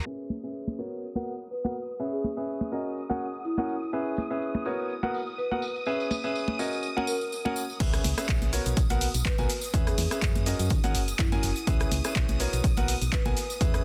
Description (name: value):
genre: piano house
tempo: 124 BPM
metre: 4/4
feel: swing 55% on 16ths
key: C# dorian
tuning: A4 = 440 Hz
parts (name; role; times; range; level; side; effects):
- string machine, violins; sustained chords; 0.0-13.8 s; D#6; -42 LUFS; equal; ensemble chorus, sidechain pumping
- clear grand piano; riff; 0.1-13.8 s; B3 to G#5; -34 LUFS; equal; sidechain pumping, digital delay
- tambourine and congas; percussion; 0.1-13.8 s; none; -38 LUFS; equal; none
- marimba with soft mallets; melody; 1.5-13.3 s; E4 to B4; -39 LUFS; equal; digital delay
- solid FM bass; bass; 7.8-13.8 s; F#1 to D#3; -32 LUFS; equal; sidechain pumping
- electronic kick drum; drums; 7.8-13.7 s; none; -30 LUFS; equal; none
- punchy analog drum machine; drums; 7.8-13.8 s; crash cymbal, handclaps, hi-hat, rim click, shaker; -35 LUFS; equal; low-pass filter on hats, low-pass filter on snare, low-pass filter on cymbals, low-pass filter on perc, low-pass filter on room
room: light reverb, digital ambience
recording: dense, heavily limited modern master, low-pass filter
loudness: -28 LUFS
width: mono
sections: 0.1-7.8 A section; 7.8-13.8 B section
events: filter sweep 0.1-7.8; drop 7.8-13.8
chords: 0.1 C#m7; 0.8 Bmaj7; 1.8 E6; 2.7 F#; 3.9 C#m7; 4.7 Bmaj7; 5.6 E6; 6.6 F#; 7.8 C#m7; 8.5 Bmaj7; 9.5 E6; 10.5 F#; 11.7 C#m7; 12.4 Bmaj7